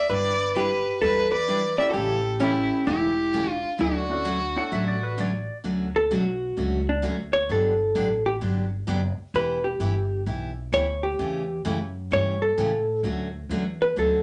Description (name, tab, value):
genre	country, western swing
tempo	130 BPM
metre	4/4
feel	swing 66% on 8ths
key	D major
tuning	A4 = 439 Hz
part	vintage hollow-body jazz guitar	melody	0.0-14.2 s	C#4 to D5	-26 LUFS	equal	none
part	clear fiddle	second line	0.0-5.2 s	E4 to E5	-30 LUFS	equal	none
part	picked steel-string acoustic guitar	accompaniment	0.1-14.2 s	C#3 to B4	-32 LUFS	equal	none
part	upright bass	bass	0.1-14.2 s	E1 to A2	-33 LUFS	equal	none
part	warm upright piano	accompaniment	1.8-5.2 s	A3 to C#5	-34 LUFS	equal	none
part	clean lap steel guitar	second line	4.6-5.6 s	B4 to F#5	-34 LUFS	equal	none
room	wet studio reverb, RT60 0.5 s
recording	nothing above 10.6 kHz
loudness	-25 LUFS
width	mono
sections	0.0-5.7 A section; 5.7-14.2 B section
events	hollow-body jazz guitar solo 5.7-14.2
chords	0.1 Em7/G; 1.9 A7; 3.8 Dmaj7; 7.5 Gmaj7; 9.3 Em; 11.2 A7; 13.0 Dmaj7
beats	| 0.10 0.56 1.02 1.49 | 1.95 2.41 2.87 3.34 | 3.80 4.26 4.72 5.19 | 5.65 6.11 6.58 7.04 | 7.50 7.96 8.43 8.89 | 9.35 9.81 10.27 10.74 | 11.20 11.66 12.12 12.59 | 13.05 13.51 13.97